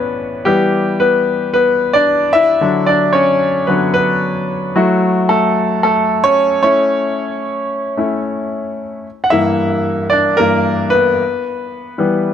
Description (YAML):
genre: pop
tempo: 112 BPM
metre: 4/4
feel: straight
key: unclear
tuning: A4 = 440 Hz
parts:
  - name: bright concert grand piano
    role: solo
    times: 0.0-12.3 s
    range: G2 to F#5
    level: -12 LUFS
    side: left 1 dB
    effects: none
room: light reverb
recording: none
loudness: -12 LUFS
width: side -9 dB against mid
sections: 0.0-9.1 A section; 9.1-12.3 B section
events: grand piano solo 0.0-9.1, 9.1-12.3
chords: 0.5 Em; 2.6 Bm/D; 4.8 F#m7; 6.6 A; 9.1 Gm6; 11.2 Em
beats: | 0.47 1.01 1.54 2.08 | 2.62 3.15 3.69 4.23 | 4.76 5.30 5.84 6.37 | 6.91 7.44 7.98 8.52 | 9.05 9.59 10.12 10.66 | 11.19 11.73 12.26